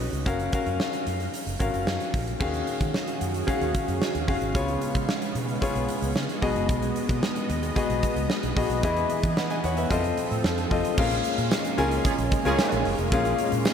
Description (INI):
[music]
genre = 1980s-style pop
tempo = 112 BPM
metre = 4/4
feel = straight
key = unclear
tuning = A4 = 437 Hz
[part]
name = bright concert grand piano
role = accompaniment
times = 0.0-13.7 s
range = A#2 to B5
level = -27 LUFS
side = left 4 dB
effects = shimmer reverb
[part]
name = vintage muted fingered electric bass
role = bass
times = 0.0-13.6 s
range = F1 to E3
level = -30 LUFS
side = right 1 dB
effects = none
[part]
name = huge arena drum kit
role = drums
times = 0.1-13.7 s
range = crash cymbal, hi-hat, kick drum, snare drum, tambourine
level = -28 LUFS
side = right 1 dB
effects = none
[part]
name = lush unison pad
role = sustained chords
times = 2.4-13.7 s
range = C#3 to E#5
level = -31 LUFS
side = right 3 dB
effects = chorus, phaser, shimmer reverb
[part]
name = warm horn section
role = stabs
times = 12.0-12.8 s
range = C#4 to G#4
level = -33 LUFS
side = right 6 dB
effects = shimmer reverb
[sound]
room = moderate lush hall reverb, RT60 1.8 s, small room ambience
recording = none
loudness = -23 LUFS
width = side -8 dB against mid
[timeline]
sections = 0.0-2.4 A section; 2.4-11.0 B section; 11.0-13.7 C section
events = none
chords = 0.3 F#maj7; 2.4 D#m11; 4.5 C#7; 6.4 B6; 8.8 Emaj7; 9.9 F7; 11.0 A#m7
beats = | 0.26 0.80 1.33 1.87 | 2.41 2.94 3.48 4.01 | 4.55 5.08 5.62 6.16 | 6.69 7.23 7.76 8.30 | 8.84 9.37 9.91 10.44 | 10.98 11.51 12.05 12.59 | 13.12 13.66